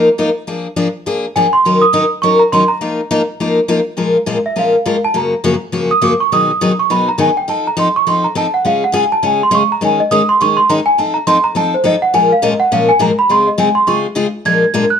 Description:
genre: jazz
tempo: 206 BPM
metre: 4/4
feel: swing 57% on 8ths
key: Bb minor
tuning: A4 = 440 Hz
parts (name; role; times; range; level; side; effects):
- picked steel-string acoustic guitar; accompaniment; 0.0-14.8 s; Gb2 to Bb4; -15 LUFS; left 2 dB; none
- celesta; melody; 1.4-15.0 s; C5 to Ab6; -13 LUFS; right 2 dB; none
room: moderate studio reverb, RT60 0.8 s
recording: none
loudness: -11 LUFS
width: side -7 dB against mid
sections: 0.0-4.0 A section; 4.0-13.3 B section; 13.3-15.0 B section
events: celesta solo 4.0-15.0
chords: 0.5 Bb7/F; 1.6 Ebm7; 2.8 F7sus4; 4.0 Bbm7; 5.1 Gbmaj7; 6.3 B6; 7.5 F7; 8.6 Db; 9.8 Eb7sus4; 11.0 F7; 12.1 Bbm7; 13.3 Dbmaj7; 14.4 Bb7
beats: 0.18 | 0.47 0.77 1.06 1.35 | 1.64 1.93 2.23 2.52 | 2.81 3.10 3.39 3.68 | 3.98 4.27 4.56 4.85 | 5.14 5.44 5.73 6.02 | 6.31 6.61 6.90 7.19 | 7.48 7.77 8.06 8.36 | 8.65 8.94 9.23 9.52 | 9.81 10.10 10.39 10.68 | 10.97 11.26 11.55 11.84 | 12.13 12.42 12.71 13.00 | 13.29 13.58 13.87 14.16 | 14.45 14.74

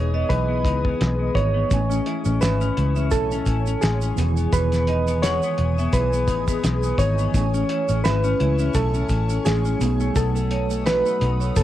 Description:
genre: indie pop, bedroom pop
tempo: 85 BPM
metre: 4/4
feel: swing 55% on 16ths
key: A lydian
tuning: A4 = 442 Hz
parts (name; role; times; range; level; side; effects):
- soft electric-piano-like synth keys; melody; 0.0-11.6 s; G#4 to C#5; -25 LUFS; right 1 dB; wide subtle chorus, cassette tape, analog delay
- mellow reed electric piano; accompaniment; 0.0-11.6 s; D#3 to G#5; -31 LUFS; right 7 dB; fast tremolo, cassette tape
- semi-hollow electric guitar; accompaniment; 0.0-11.6 s; A2 to E4; -28 LUFS; left 8 dB; analog chorus, warbly pitch drift, cassette tape
- ethereal airy pad; sustained chords; 0.0-11.6 s; G#4 to D#6; -35 LUFS; left 2 dB; ensemble chorus, built-in reverb, phaser, cassette tape
- vintage muted fingered electric bass; bass; 0.0-11.6 s; E1 to C#2; -22 LUFS; equal; none
- vibraphone with hard mallets; second line; 0.1-11.6 s; B4 to F#5; -32 LUFS; right 8 dB; wide subtle chorus, cassette tape, analog delay
- cloth-damped thuddy drum kit; drums; 0.3-11.6 s; hi-hat, kick drum, snare drum; -25 LUFS; equal; cassette tape
- tube shaker; percussion; 1.7-11.6 s; none; -39 LUFS; right 11 dB; none
room: small room ambience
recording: home recording on cassette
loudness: -19 LUFS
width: side -13 dB against mid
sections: 0.0-11.6 A section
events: none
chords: 0.0 Emaj7; 1.7 Amaj7; 4.2 Emaj7; 7.3 Amaj7; 9.8 B7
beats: 0.30 1.00 | 1.71 2.41 3.12 3.82 | 4.53 5.23 5.93 6.64 | 7.34 8.04 8.75 9.45 | 10.16 10.86 11.57

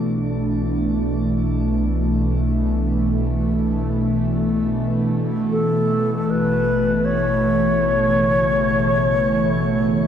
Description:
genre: ambient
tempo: free time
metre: none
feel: none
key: unclear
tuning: A4 = 438 Hz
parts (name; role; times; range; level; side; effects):
- airy breathy pad; sustained chords; 0.0-10.1 s; B2 to D4; -19 LUFS; right 1 dB; chorus, shimmer reverb
- deep rumbling drone; bass; 0.2-10.1 s; A1 to B1; -27 LUFS; equal; built-in reverb, phaser
- alto flute; melody; 5.5-10.1 s; A4 to C#5; -20 LUFS; left 2 dB; shimmer reverb, tape echo
room: wet lush hall reverb, RT60 2.8 s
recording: none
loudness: -17 LUFS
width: side -9 dB against mid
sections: 0.0-10.1 A section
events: fade-out on synth drone 0.0-10.1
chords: 0.0 Bm7; 5.5 Aadd9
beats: free time

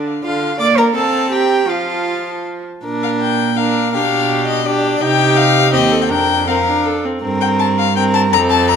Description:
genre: quick classical-period movement for string quartet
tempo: 154-170 BPM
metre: 3/4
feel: rubato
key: Bb major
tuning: A4 = 440 Hz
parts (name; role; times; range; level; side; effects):
- warm violin; melody; 0.0-8.8 s; D5 to Bb5; -18 LUFS; left 10 dB; none
- warm violin; second line; 0.0-8.8 s; G4 to D6; -19 LUFS; left 2 dB; none
- warm viola; accompaniment; 0.0-8.8 s; D3 to Eb4; -20 LUFS; right 2 dB; none
- rich cello; bass; 0.0-8.8 s; Eb2 to D5; -19 LUFS; right 6 dB; none
room: moderate recital hall reverb, RT60 1.5 s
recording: none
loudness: -13 LUFS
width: side -7 dB against mid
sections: 0.0-2.8 A section; 2.8-8.8 B section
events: none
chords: 0.0 Dm; 0.6 Bb; 1.0 F/C; 1.3 C5; 1.7 F; 2.8 Bb; 3.9 G7/B; 5.0 Cm; 5.7 Cm/Eb; 6.1 Bb/F; 7.2 C5/G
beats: 0.24 | 0.60 0.96 1.31 | 1.69 2.07 2.45 | 2.84 3.21 3.57 | 3.93 4.30 4.66 | 5.01 5.37 5.73 | 6.10 6.48 6.85 | 7.23 7.59 7.96 | 8.32 8.68

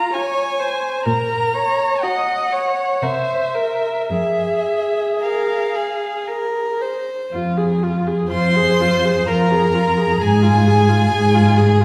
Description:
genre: classical, slow romantic movement for string quartet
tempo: 53-67 BPM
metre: 3/4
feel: rubato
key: F minor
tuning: A4 = 440 Hz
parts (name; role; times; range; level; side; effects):
- rich violin; melody; 0.0-11.8 s; E5 to C6; -24 LUFS; equal; none
- rich viola; accompaniment; 0.0-11.8 s; F4 to Eb5; -24 LUFS; equal; none
- rich violin; second line; 0.2-11.8 s; F4 to C5; -24 LUFS; equal; none
- warm cello; bass; 1.1-11.8 s; F2 to C3; -20 LUFS; equal; none
room: wet recital hall reverb, RT60 1.6 s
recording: heard from further back in the room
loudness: -18 LUFS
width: mono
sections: 0.0-7.3 A section; 7.3-11.8 B section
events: none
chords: 0.0 Fm; 1.1 Gb/Bb; 3.0 C7; 4.1 Fm; 10.2 Fm/Ab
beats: 0.14 | 1.07 2.03 3.03 | 4.10 5.21 6.27 | 7.33 8.32 9.28 | 10.21 11.12

